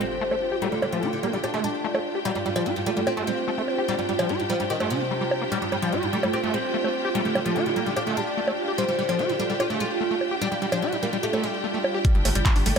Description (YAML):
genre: psychedelic trance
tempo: 147 BPM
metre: 4/4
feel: straight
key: unclear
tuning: A4 = 440 Hz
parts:
  - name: oud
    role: melody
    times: 0.0-12.8 s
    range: G2 to F4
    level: -28 LUFS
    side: left 2 dB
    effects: phaser, sidechain pumping, digital delay
  - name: pulsing gated texture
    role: sustained chords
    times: 0.0-12.8 s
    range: D4 to F4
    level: -31 LUFS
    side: right 7 dB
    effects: chorus, built-in reverb, sidechain pumping
  - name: screaming distorted acid line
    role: riff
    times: 0.0-12.8 s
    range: F3 to G4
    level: -28 LUFS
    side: moving between left 4 dB and right 2 dB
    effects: distortion, chorus, auto-pan, sidechain pumping, digital delay
  - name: impact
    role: sound effects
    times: 0.0-0.6 s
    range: none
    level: -45 LUFS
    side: equal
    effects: none
  - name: clear studio string section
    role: texture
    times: 0.0-12.8 s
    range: D4 to G5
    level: -31 LUFS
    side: left 1 dB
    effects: sidechain pumping
  - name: techno drum kit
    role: drums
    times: 0.3-12.8 s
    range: bongos, handclaps, hi-hat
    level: -30 LUFS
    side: right 1 dB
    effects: overdrive, low-pass filter on hats, low-pass filter on perc, low-pass filter on snare
  - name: electronic kick drum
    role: drums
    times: 12.0-12.5 s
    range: none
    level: -20 LUFS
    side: equal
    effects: none
  - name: round analog bass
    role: bass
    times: 12.1-12.8 s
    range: G1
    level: -24 LUFS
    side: equal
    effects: none
room: moderate lush hall reverb, RT60 2.2 s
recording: none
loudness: -22 LUFS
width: side -6 dB against mid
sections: 0.0-12.0 A section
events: impact 0.0-0.6; filter sweep on drum 0.0-12.0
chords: 0.0 G5